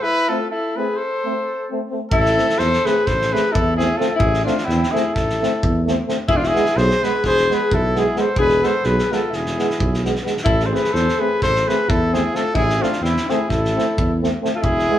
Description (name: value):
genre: balkan folk, Balkan brass band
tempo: 259 BPM (eighths)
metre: 9/8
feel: straight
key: A harmonic minor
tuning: A4 = 441 Hz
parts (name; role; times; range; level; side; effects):
- warm trumpet; melody; 0.0-15.0 s; E4 to C5; -22 LUFS; equal; none
- warm alto saxophone; second line; 0.0-15.0 s; C4 to A4; -22 LUFS; left 2 dB; none
- clear euphonium; accompaniment; 0.3-15.0 s; G#3 to A3; -25 LUFS; right 4 dB; none
- clear trombone; accompaniment; 0.3-15.0 s; B3 to C4; -28 LUFS; left 5 dB; none
- dark tuba; bass; 2.1-14.9 s; E1 to E2; -22 LUFS; equal; none
- loose indie drum kit; percussion; 2.1-14.8 s; kick drum, snare drum; -25 LUFS; right 1 dB; none
room: wet large studio reverb, RT60 0.9 s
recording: band playing live in one room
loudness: -16 LUFS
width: side -11 dB against mid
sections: 0.0-2.1 A section; 2.1-15.0 A section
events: break 0.0-2.1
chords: 0.0 Am; 6.3 E; 10.5 Am